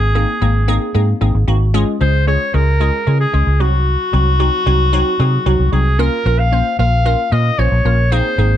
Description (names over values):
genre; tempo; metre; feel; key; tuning
dance-pop; 113 BPM; 4/4; straight; Bb minor; A4 = 441 Hz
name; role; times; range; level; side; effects
clear clarinet; melody; 0.0-8.6 s; Gb4 to F5; -18 LUFS; left 1 dB; none
glassy wavetable pluck; accompaniment; 0.0-8.6 s; Gb3 to C5; -20 LUFS; equal; chorus
vintage muted fingered electric bass; bass; 0.0-8.6 s; Ab1 to Db3; -14 LUFS; equal; none
room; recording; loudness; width
light reverb; none; -12 LUFS; side -11 dB against mid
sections
0.0-8.6 A section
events
none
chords
0.0 Abadd9; 1.7 Db; 3.6 Cdim; 6.0 Bbm